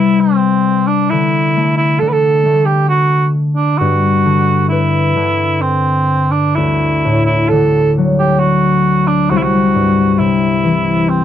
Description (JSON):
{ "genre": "celtic folk, Celtic slow air", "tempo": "67 BPM", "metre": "3/4", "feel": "rubato", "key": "D mixolydian", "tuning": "A4 = 440 Hz", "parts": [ { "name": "mellow cor anglais", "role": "melody", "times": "0.0-11.2 s", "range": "C4 to B4", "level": "-15 LUFS", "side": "right 4 dB", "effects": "none" }, { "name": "concert harp", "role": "accompaniment", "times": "0.0-11.2 s", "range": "C2 to B4", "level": "-13 LUFS", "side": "left 3 dB", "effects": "none" } ], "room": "light reverb", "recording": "dry, close 1970s-style studio recording", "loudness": "-11 LUFS", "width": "side -10 dB against mid", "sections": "0.0-11.2 A section", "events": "none", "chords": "0.0 Cmaj7(no3); 1.1 D5; 3.8 Gmaj7; 6.6 D; 9.3 C", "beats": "0.22 | 1.12 2.01 2.90 | 3.80 4.71 5.63 | 6.57 7.51 8.42 | 9.31 10.20 11.09" }